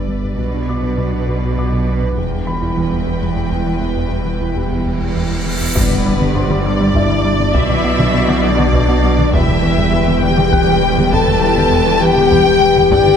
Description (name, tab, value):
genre	cinematic, hybrid orchestral and electronic film score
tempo	67 BPM (dotted quarters)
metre	6/8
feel	straight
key	E minor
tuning	A4 = 443 Hz
part	warm symphonic violin section	second line	0.0-13.2 s	B4 to A5	-21 LUFS	left 3 dB	none
part	airy breathy pad	sustained chords	0.0-13.2 s	B2 to D5	-24 LUFS	equal	chorus, low-pass filter
part	rubbery square bass	riff	0.0-13.1 s	E2 to B3	-23 LUFS	left 2 dB	low-pass filter
part	pure sine sub bass	bass	0.0-13.2 s	E1 to B1	-23 LUFS	equal	none
part	rich symphonic cello section	bass	0.0-13.2 s	E2 to B2	-22 LUFS	right 4 dB	none
part	rich symphonic double bass section	bass	0.0-13.2 s	E1 to B1	-22 LUFS	right 4 dB	none
part	sub drop, cymbal swell and impact	sound effects	0.0-0.4, 5.0-7.5 s	none	-23 LUFS	equal	none
part	dark baby grand piano	texture	0.0-13.2 s	E4 to F#6	-30 LUFS	equal	tape echo
part	harp-like synth pluck	arpeggios	0.1-13.0 s	E3 to B4	-26 LUFS	equal	none
part	taiko ensemble	drums	2.2-13.2 s	none	-22 LUFS	equal	none
part	mellow French horn section	sustained chords	5.7-13.2 s	B3 to A4	-17 LUFS	left 6 dB	low-pass filter
part	rich symphonic violin section	melody	5.8-13.2 s	D5 to G5	-25 LUFS	left 5 dB	low-pass filter
part	dark symphonic viola section	accompaniment	5.8-13.2 s	F#3 to D5	-23 LUFS	right 1 dB	low-pass filter
room	wet concert hall reverb, RT60 2.1 s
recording	none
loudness	-12 LUFS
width	side -7 dB against mid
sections	0.0-5.8 A section; 5.8-13.2 B section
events	impact 0.0-0.4, 5.8-7.5; filter sweep 0.0-5.8; cymbal swell 5.0-5.8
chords	0.4 Bm; 2.2 Em; 5.8 G; 7.5 Bm; 9.3 Em